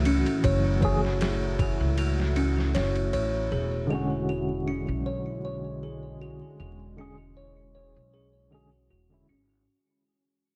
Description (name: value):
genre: trip hop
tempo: 78 BPM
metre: 4/4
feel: swing 54% on 16ths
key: unclear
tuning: A4 = 440 Hz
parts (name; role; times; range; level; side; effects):
- tine electric piano; accompaniment; 0.0-9.3 s; D3 to G#4; -34 LUFS; equal; tremolo, low-pass filter, tape echo
- deep dark ambient pad; sustained chords; 0.0-9.6 s; D3 to F#4; -38 LUFS; equal; chorus, built-in reverb
- music box; arpeggios; 0.0-9.6 s; C#4 to C#5; -34 LUFS; equal; low-pass filter, delay
- upright bass; bass; 0.0-9.6 s; E1 to C#2; -31 LUFS; equal; none
- boom bap sampler-style drum kit; drums; 0.1-3.3 s; kick drum, ride cymbal, snare drum; -34 LUFS; equal; overdrive
room: light reverb, digital ambience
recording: worn, warbling old tape, cassette tape, vinyl crackle, warbly pitch drift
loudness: -27 LUFS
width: mono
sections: 0.0-9.7 A section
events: fade-out 0.0-9.7; filter sweep on music box 0.0-9.7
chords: 0.0 F#m7; 3.5 E13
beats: | 0.44 1.21 1.98 2.75 | 3.52 4.29 5.05 5.82 | 6.59 7.36 8.13 8.90